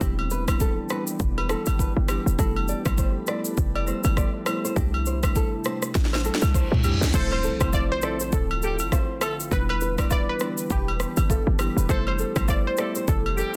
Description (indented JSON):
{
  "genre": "afrobeats",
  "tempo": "101 BPM",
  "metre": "4/4",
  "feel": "swing 58% on 16ths",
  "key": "D dorian",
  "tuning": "A4 = 441 Hz",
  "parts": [
    { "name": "marimba with medium mallets", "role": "accompaniment", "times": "0.0-13.0 s", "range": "F3 to E4", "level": "-34 LUFS", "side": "equal", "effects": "none" },
    { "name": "glassy FM pad", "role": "sustained chords", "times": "0.0-13.6 s", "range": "C3 to C5", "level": "-40 LUFS", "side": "equal", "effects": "ensemble chorus, built-in reverb" },
    { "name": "nylon-string guitar", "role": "riff", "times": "0.0-13.5 s", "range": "G4 to D5", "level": "-36 LUFS", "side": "equal", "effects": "digital delay" },
    { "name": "short 808-style bass", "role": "bass", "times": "0.0-13.4 s", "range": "D1 to C2", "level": "-28 LUFS", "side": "equal", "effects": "none" },
    { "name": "afro-pop drum kit", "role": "drums", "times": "0.0-13.5 s", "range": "crash cymbal, kick drum, rim click, shaker, snare drum, toms", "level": "-28 LUFS", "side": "equal", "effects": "soft clipping on snare" },
    { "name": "agogo bells and woodblock", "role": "percussion", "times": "0.2-13.4 s", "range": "none", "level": "-36 LUFS", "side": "equal", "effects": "none" },
    { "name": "reverse cymbal and impact", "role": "sound effects", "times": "6.5-9.5 s", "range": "none", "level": "-38 LUFS", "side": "equal", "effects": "none" },
    { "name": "clear horn section", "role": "second line", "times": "7.1-13.5 s", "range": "G3 to C5", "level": "-35 LUFS", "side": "equal", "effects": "none" },
    { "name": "glassy wavetable pluck", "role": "melody", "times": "7.2-13.6 s", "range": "G4 to D5", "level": "-32 LUFS", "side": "equal", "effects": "chorus, digital delay" }
  ],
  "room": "studio reverb",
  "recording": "dense, heavily limited modern master",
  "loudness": "-24 LUFS",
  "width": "mono",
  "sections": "0.0-7.1 A section; 7.1-13.6 B section",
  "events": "drum fill 6.0-7.1; reverse cymbal 6.5-7.1; impact 7.1-9.5",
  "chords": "0.0 Em7; 2.4 Fmaj9#11; 4.8 C6; 7.1 Dm9; 9.5 Em7; 11.9 Fmaj9#11",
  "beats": "| 0.01 0.60 1.20 1.79 | 2.39 2.98 3.58 4.17 | 4.76 5.36 5.95 6.54 | 7.14 7.73 8.33 8.92 | 9.52 10.11 10.70 11.30 | 11.89 12.49 13.08"
}